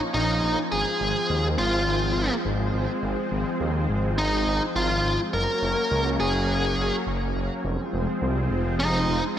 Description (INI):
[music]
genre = synthwave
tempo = 104 BPM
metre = 4/4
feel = straight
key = unclear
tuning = A4 = 435 Hz
[part]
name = analog string pad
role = sustained chords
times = 0.0-9.4 s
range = F3 to Db4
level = -28 LUFS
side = equal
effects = ensemble chorus
[part]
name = bluesy overdriven lead guitar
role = melody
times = 0.1-9.2 s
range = Eb4 to Bb4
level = -25 LUFS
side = equal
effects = distortion, digital delay
[part]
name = dark detuned saw bass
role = bass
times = 0.1-9.2 s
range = F1 to Eb2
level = -26 LUFS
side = equal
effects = tube saturation
[sound]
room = moderate lush hall reverb, RT60 2.2 s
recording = bright 1980s-style digital production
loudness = -22 LUFS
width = side -10 dB against mid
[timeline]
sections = 0.0-9.4 A section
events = none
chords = 0.0 Bbm; 0.7 Ab6; 5.3 Gb; 7.6 Fm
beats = 0.14 | 0.72 1.30 1.87 2.45 | 3.03 3.60 4.18 4.76 | 5.33 5.91 6.49 7.07 | 7.64 8.22 8.80 9.37